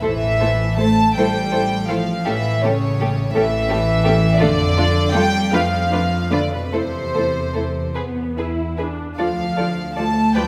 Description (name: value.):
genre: classical, slow romantic movement for string orchestra.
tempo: 47-58 BPM (dotted quarters).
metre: 6/8.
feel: rubato.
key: A minor.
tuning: A4 = 440 Hz.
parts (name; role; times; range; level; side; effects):
warm symphonic violin section; melody; 0.0-10.5 s; B4 to A5; -24 LUFS; equal; none.
warm studio violin section; second line; 0.0-10.4 s; F4 to D5; -28 LUFS; equal; none.
dark symphonic viola section; accompaniment; 0.0-10.4 s; F3 to F4; -29 LUFS; equal; none.
dark symphonic double bass section; bass; 0.0-10.5 s; A1 to F2; -25 LUFS; equal; none.
rich studio cello section; bass; 0.0-10.5 s; B2 to A3; -24 LUFS; equal; none.
room: wet scoring stage reverb, RT60 1.7 s.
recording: none.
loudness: -19 LUFS.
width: mono.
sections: 0.0-10.5 A section.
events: none.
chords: 0.0 A5; 2.2 A7; 4.4 Dm/F; 5.5 Bm7b5/F; 6.7 Am/E; 8.0 E5; 9.2 Dm.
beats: | 0.02 1.16 | 2.25 3.34 | 4.39 5.53 | 6.74 7.97 | 9.19 10.35.